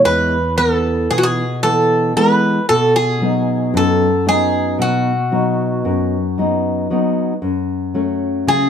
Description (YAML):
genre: greek folk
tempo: 114 BPM (eighths)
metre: 9/8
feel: straight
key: unclear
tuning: A4 = 441 Hz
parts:
  - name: nylon-string guitar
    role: accompaniment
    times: 0.0-8.7 s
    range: E2 to D#4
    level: -16 LUFS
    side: left 1 dB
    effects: none
  - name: Greek bouzouki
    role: melody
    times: 0.1-8.7 s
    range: F#4 to B4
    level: -16 LUFS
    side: right 1 dB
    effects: plate reverb
room: wet studio reverb, RT60 0.6 s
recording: dark, warm production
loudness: -14 LUFS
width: side -8 dB against mid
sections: 0.0-8.7 A section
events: none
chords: 0.0 E; 2.7 B; 7.4 F#m